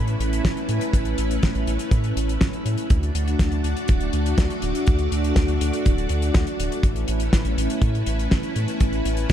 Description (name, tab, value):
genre	italo disco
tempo	122 BPM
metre	4/4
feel	straight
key	A major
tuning	A4 = 439 Hz
part	string machine, full ensemble	sustained chords	0.0-9.3 s	A3 to D5	-25 LUFS	equal	ensemble chorus, shimmer reverb
part	round analog bass	bass	0.0-9.3 s	D1 to A2	-24 LUFS	equal	none
part	damped 70s drum kit	drums	0.1-9.3 s	hi-hat, snare drum	-28 LUFS	left 2 dB	studio reverb
part	kick drum	drums	0.4-9.3 s	none	-20 LUFS	equal	studio reverb
room	light reverb, small room ambience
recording	dark, warm production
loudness	-20 LUFS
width	side -10 dB against mid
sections	0.0-9.3 A section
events	none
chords	0.0 Aadd9; 2.9 D; 6.8 Aadd9